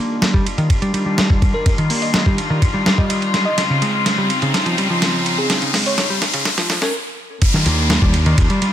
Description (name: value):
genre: breakbeat, breaks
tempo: 125 BPM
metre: 4/4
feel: straight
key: unclear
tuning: A4 = 439 Hz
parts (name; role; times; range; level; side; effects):
- warm studio string section; sustained chords; 0.0-8.7 s; Db3 to F4; -22 LUFS; left 3 dB; sidechain pumping, low-pass filter
- picked electric bass; riff; 0.0-8.7 s; Db3 to Db4; -21 LUFS; equal; low-pass filter, tape echo
- riser and downlifter; sound effects; 1.3-8.7 s; none; -24 LUFS; left 1 dB; none
- dusty soul sampler-style drum kit; drums; 0.2-8.7 s; hi-hat, kick drum, ride cymbal, snare drum; -18 LUFS; equal; small room ambience
- bell-like FM electric piano; melody; 1.5-6.9 s; Ab4 to Eb5; -27 LUFS; right 1 dB; chorus, phaser, old record sound, vintage 12-bit sampler grit, tape echo
- modern bright picked electric bass; bass; 7.7-8.5 s; Eb2; -17 LUFS; equal; none
room: light reverb, digital ambience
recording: high-pass filter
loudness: -14 LUFS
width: side -11 dB against mid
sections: 0.0-7.4 A section; 7.4-8.7 B section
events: build-up 0.0-7.4; filter sweep on picked electric bass 0.0-7.4; filter sweep 0.0-7.4; riser 1.3-6.9; drum fill 3.6-6.9; stop 6.9-7.4; drop 7.4-8.7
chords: 0.0 Ebmaj9; 3.6 Dbmaj9; 7.4 Ebmaj9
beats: 0.22 0.70 1.18 | 1.66 2.14 2.62 3.10 | 3.58 4.06 4.54 5.02 | 5.50 5.98 6.46 6.94 | 7.42 7.90 8.38